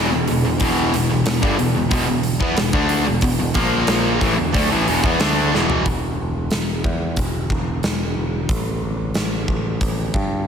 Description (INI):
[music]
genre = hard rock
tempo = 91 BPM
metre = 4/4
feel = straight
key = unclear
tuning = A4 = 440 Hz
[part]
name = distorted electric guitar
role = riff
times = 0.0-5.9 s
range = E2 to D4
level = -23 LUFS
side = right 8 dB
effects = overdrive, slapback echo
[part]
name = distorted electric guitar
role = riff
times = 0.0-5.9 s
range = E2 to D4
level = -23 LUFS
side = left 1 dB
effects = overdrive
[part]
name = overdriven semi-hollow guitar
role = riff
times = 0.0-5.9 s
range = E2 to D4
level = -23 LUFS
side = left 9 dB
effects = slapback echo
[part]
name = picked electric bass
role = bass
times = 0.0-10.5 s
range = E1 to G2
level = -24 LUFS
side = equal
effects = none
[part]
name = huge arena drum kit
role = drums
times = 0.3-10.3 s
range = hi-hat, kick drum, snare drum, toms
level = -22 LUFS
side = equal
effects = none
[sound]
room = moderate lush hall reverb, RT60 1.6 s, small room ambience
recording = big arena sound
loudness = -17 LUFS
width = side -7 dB against mid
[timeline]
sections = 0.0-5.9 A section; 5.9-10.5 B section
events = drum fill 5.5-5.9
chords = 0.0 Em; 3.6 A#5; 4.2 E5; 5.9 N.C.; 8.5 Gsus2